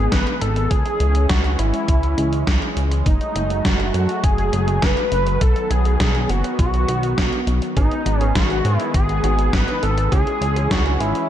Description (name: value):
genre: synthwave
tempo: 102 BPM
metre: 4/4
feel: straight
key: G# phrygian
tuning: A4 = 441 Hz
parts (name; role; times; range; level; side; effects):
- wide unison lead; melody; 0.0-11.3 s; D#4 to B4; -23 LUFS; equal; lush chorus, cassette tape, tape echo
- lush unison pad; sustained chords; 0.0-11.3 s; D#3 to C#4; -27 LUFS; equal; chorus, phaser, sidechain pumping
- chorused synth bass; bass; 0.0-11.1 s; F#1 to G#2; -20 LUFS; equal; none
- electronic kick drum; drums; 0.1-10.8 s; none; -20 LUFS; equal; none
- gated 80s digital drum machine; drums; 0.1-11.3 s; hi-hat, snare drum; -25 LUFS; right 1 dB; gated reverb, gated reverb snare
- warm baby grand piano; stabs; 7.8-11.3 s; B3 to B4; -28 LUFS; right 2 dB; none
room: light reverb, digital ambience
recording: dark, warm production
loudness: -16 LUFS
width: side -11 dB against mid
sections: 0.0-11.3 A section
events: none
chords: 0.0 G#m; 0.7 C#m; 3.1 F#madd9; 5.4 B; 7.8 G#m; 10.1 C#m